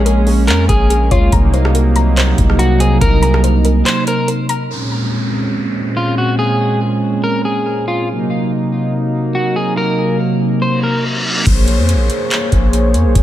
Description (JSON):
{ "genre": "hip hop, atmospheric cloud-rap", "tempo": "142 BPM", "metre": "4/4", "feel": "half-time", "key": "Bb minor", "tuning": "A4 = 439 Hz", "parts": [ { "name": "electric guitar at the edge of break-up", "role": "melody", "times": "0.0-11.0 s", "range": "F4 to C5", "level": "-20 LUFS", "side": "left 1 dB", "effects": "digital delay" }, { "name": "warm analog pad", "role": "sustained chords", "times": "0.0-13.2 s", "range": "Bb2 to Db5", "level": "-16 LUFS", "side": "right 1 dB", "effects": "chorus, sidechain pumping" }, { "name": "soft round pluck", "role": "arpeggios", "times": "0.0-4.7 s", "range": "Ab4 to Bb5", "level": "-24 LUFS", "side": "left 4 dB", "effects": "chorus, digital delay" }, { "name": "long sustained 808-style bass", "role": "bass", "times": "0.0-3.8, 11.5-13.2 s", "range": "Bb1 to F2", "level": "-13 LUFS", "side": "equal", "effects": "none" }, { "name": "booming analog drum machine", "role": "drums", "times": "0.1-4.6, 11.5-13.2 s", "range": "crash cymbal, handclaps, hi-hat, kick drum, rim click", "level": "-16 LUFS", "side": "equal", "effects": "none" }, { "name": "downlifter and reverse cymbal", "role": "sound effects", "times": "4.7-8.1, 10.8-13.2 s", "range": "none", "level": "-24 LUFS", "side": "equal", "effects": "none" } ], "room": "light reverb", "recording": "none", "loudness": "-12 LUFS", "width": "side -12 dB against mid", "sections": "0.0-4.7 A section; 4.7-11.5 B section; 11.5-13.2 C section", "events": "break 3.9-4.7; reverse cymbal 10.8-11.5", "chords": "0.0 Bbm7; 1.3 Cm7b5; 4.7 Bbm9; 8.1 Cm7b5; 11.5 Bbm9", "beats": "0.06 0.48 0.90 | 1.32 1.75 2.17 2.59 | 3.02 3.44 3.86 4.28 | 4.71 5.13 5.55 5.97 | 6.39 6.82 7.24 7.66 | 8.09 8.51 8.93 9.35 | 9.78 10.20 10.62 11.04 | 11.46 11.89 12.31 12.73 | 13.16" }